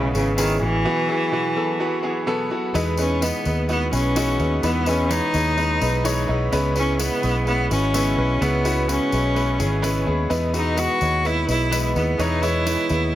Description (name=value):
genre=piano-driven pop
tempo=127 BPM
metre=4/4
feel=straight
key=E major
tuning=A4 = 440 Hz
part: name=clear cello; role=melody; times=0.0-13.2 s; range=C#3 to F#4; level=-23 LUFS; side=left 1 dB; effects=none
part: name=clear concert grand piano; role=accompaniment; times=0.0-13.2 s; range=G#2 to C#5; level=-24 LUFS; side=left 1 dB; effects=none
part: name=direct-recorded clean electric guitar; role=riff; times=0.0-13.2 s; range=B2 to B4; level=-30 LUFS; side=right 5 dB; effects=none
part: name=vintage muted fingered electric bass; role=bass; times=0.0-13.2 s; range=G#1 to E2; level=-23 LUFS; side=equal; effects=none
part: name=tambourine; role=percussion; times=0.1-13.0 s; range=none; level=-34 LUFS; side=left 6 dB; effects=none
room=light reverb, small room ambience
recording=none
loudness=-19 LUFS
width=side -13 dB against mid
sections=0.0-2.7 A section; 2.7-13.2 A section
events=break 0.9-2.7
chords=0.0 C#m7; 0.9 Bsus4; 2.7 Emaj7; 6.5 C#m7; 10.3 Emaj7